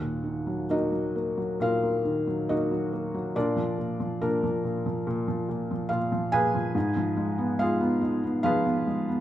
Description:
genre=classical, lyrical solo piano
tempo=70 BPM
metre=4/4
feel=rubato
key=Eb harmonic minor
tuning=A4 = 436 Hz
part: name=felt-muted upright piano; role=solo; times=0.0-9.2 s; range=Eb2 to Ab5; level=-25 LUFS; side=equal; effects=none
room=moderate recital hall reverb, RT60 1.6 s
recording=none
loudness=-25 LUFS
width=side -12 dB against mid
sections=0.0-9.2 A section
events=none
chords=0.0 Ebm; 3.4 Bb; 6.8 Fdim/Ab

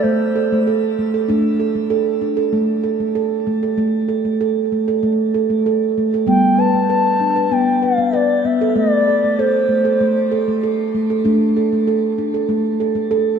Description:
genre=world meditative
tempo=96 BPM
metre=4/4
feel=straight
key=unclear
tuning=A4 = 439 Hz
part: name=mellow bass bansuri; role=melody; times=0.0-0.7, 6.3-10.3 s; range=C5 to A5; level=-20 LUFS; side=left 1 dB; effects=shimmer reverb, tape echo
part: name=steel tongue drum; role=arpeggios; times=0.0-13.4 s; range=G3 to B4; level=-16 LUFS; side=right 2 dB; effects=tape echo
room=wet recital hall reverb, RT60 1.4 s, small room ambience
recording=none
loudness=-15 LUFS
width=side -7 dB against mid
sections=0.0-13.4 A section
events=none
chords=0.0 Am; 1.3 D5; 3.8 N.C.; 6.3 G; 8.8 Am; 11.2 D5

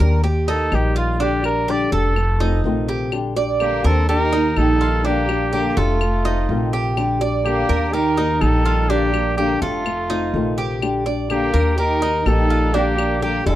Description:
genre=latin, Cuban son and guajira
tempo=125 BPM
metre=4/4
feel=straight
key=Bb major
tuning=A4 = 439 Hz
part: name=flamenco guitar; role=accompaniment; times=0.0-13.6 s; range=C3 to G4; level=-24 LUFS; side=left 5 dB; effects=none
part: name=Cuban tres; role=arpeggios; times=0.0-13.6 s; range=D4 to D5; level=-24 LUFS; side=right 4 dB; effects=none
part: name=upright bass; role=bass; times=0.0-13.6 s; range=F1 to Eb2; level=-21 LUFS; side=equal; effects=none
part: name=warm trumpet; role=melody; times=0.5-13.6 s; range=F4 to D5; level=-22 LUFS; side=equal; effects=none
part: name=claves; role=percussion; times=0.7-13.2 s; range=none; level=-30 LUFS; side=left 8 dB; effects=none
part: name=warm studio violin section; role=second line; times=3.6-13.6 s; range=A3 to Eb4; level=-25 LUFS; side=right 2 dB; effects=none
room=light reverb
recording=dry, close 1970s-style studio recording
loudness=-16 LUFS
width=side -13 dB against mid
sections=0.0-3.1 A section; 3.1-13.6 B section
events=trumpet solo 0.0-3.1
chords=0.2 Eb; 1.2 Bb6; 2.2 F7; 3.1 Bb6; 4.1 Eb; 5.0 Bb6; 6.0 F7; 7.0 Bb6; 7.9 Eb; 8.9 Bb6; 9.9 F7; 10.8 Bb6; 11.8 Eb; 12.7 Bb6

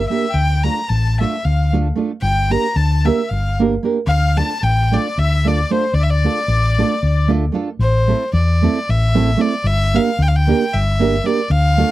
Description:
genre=balkan folk, Balkan wedding band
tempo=226 BPM (eighths)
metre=7/8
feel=straight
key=D minor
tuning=A4 = 442 Hz
part: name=clear violin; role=melody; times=0.0-11.9 s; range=C5 to Bb5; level=-22 LUFS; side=left 1 dB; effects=none
part: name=accordion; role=second line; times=0.0-7.3 s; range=C5 to Bb5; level=-25 LUFS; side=left 6 dB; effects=none
part: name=hollow-body short-scale fingered electric bass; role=bass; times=0.0-11.8 s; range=G1 to E2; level=-16 LUFS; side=left 1 dB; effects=none
part: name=nylon-string guitar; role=accompaniment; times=0.1-11.9 s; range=A3 to Bb4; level=-18 LUFS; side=right 6 dB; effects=none
room=little or no reverb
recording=dry, close 1970s-style studio recording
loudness=-14 LUFS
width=side -15 dB against mid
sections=0.0-7.8 A section; 7.8-11.9 B section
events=none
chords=0.4 Dm; 2.2 Gm; 4.1 Dm; 7.8 Am; 9.6 Gm

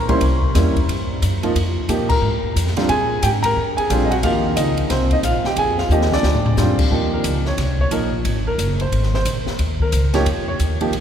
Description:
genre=jazz piano trio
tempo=179 BPM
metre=4/4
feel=swing 63% on 8ths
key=unclear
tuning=A4 = 440 Hz
part: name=warm concert grand piano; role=melody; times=0.0-10.9 s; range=D3 to C6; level=-19 LUFS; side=right 1 dB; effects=none
part: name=upright bass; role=bass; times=0.0-11.0 s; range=Gb1 to Bb2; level=-20 LUFS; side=equal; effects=none
part: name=open jazz drum kit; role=drums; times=0.1-11.0 s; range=crash cymbal, hi-hat, kick drum, ride cymbal, snare drum, toms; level=-24 LUFS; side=left 2 dB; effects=none
room=wet cathedral reverb, RT60 5.1 s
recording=recorded in a church or concert hall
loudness=-16 LUFS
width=side -9 dB against mid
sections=0.0-6.9 A section; 6.9-11.0 B section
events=band accent 2.1; drum fill 5.9-6.6; grand piano solo 6.9-11.0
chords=0.2 C7; 1.6 Fm; 2.9 Bb7(no3); 4.2 Eb13; 5.6 Fm7; 6.2 Dmadd11; 6.9 Eb13; 8.2 Ab9; 9.6 Eb7sus2

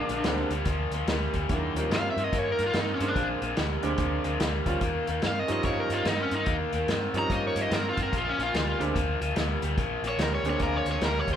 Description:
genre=electric blues shuffle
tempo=145 BPM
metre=4/4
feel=swing 63% on 8ths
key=Bb mixolydian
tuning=A4 = 442 Hz
part: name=overdriven electric guitar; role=melody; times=0.0-11.4 s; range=Db4 to Bb5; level=-30 LUFS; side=equal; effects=none
part: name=clear grand piano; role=accompaniment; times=0.0-11.0 s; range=D3 to F4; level=-33 LUFS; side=right 3 dB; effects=none
part: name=raw garage guitar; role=riff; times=0.0-11.4 s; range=Bb2 to C4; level=-30 LUFS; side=left 2 dB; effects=overdrive
part: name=vintage muted fingered electric bass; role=bass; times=0.1-11.4 s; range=Bb1 to G2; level=-32 LUFS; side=equal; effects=none
part: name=vintage drum kit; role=drums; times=0.1-11.4 s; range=hi-hat, kick drum, snare drum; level=-31 LUFS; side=equal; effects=none
room=moderate large studio reverb, RT60 1.2 s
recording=band playing live in one room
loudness=-25 LUFS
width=side -9 dB against mid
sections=0.0-11.4 A section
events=none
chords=0.0 Bb9; 1.5 Eb9; 3.2 Bb9; 4.8 Eb9; 8.1 Bb9

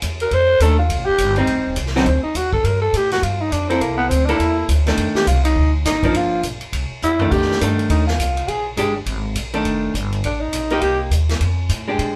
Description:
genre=jazz, small-group swing and bop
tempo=206 BPM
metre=4/4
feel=swing 60% on 8ths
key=F mixolydian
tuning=A4 = 441 Hz
part: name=upright bass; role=bass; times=0.0-12.2 s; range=Eb1 to Bb2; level=-23 LUFS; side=equal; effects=none
part: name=swinging big-band drum kit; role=drums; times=0.0-12.1 s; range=crash cymbal, hi-hat, kick drum, ride cymbal, snare drum, toms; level=-28 LUFS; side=equal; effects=none
part: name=growling tenor saxophone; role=second line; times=0.2-11.0 s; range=Bb3 to C5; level=-21 LUFS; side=equal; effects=none
part: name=archtop guitar, miked and amplified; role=accompaniment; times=0.6-12.2 s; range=D3 to A4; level=-22 LUFS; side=equal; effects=none
room=moderate studio reverb, RT60 0.5 s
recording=band playing live in one room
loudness=-19 LUFS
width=mono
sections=0.0-7.3 A section; 7.3-12.2 A section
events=tenor saxophone solo 0.0-12.2; drum fill 7.0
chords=0.3 F13; 1.5 Am7b5; 2.1 D7b9; 2.6 G7(no3); 3.8 C13; 5.0 F6; 5.6 D5; 6.1 Gm7; 6.7 C69; 7.3 F13; 8.5 Bb6; 9.7 F13; 10.8 Cm7; 11.4 F69

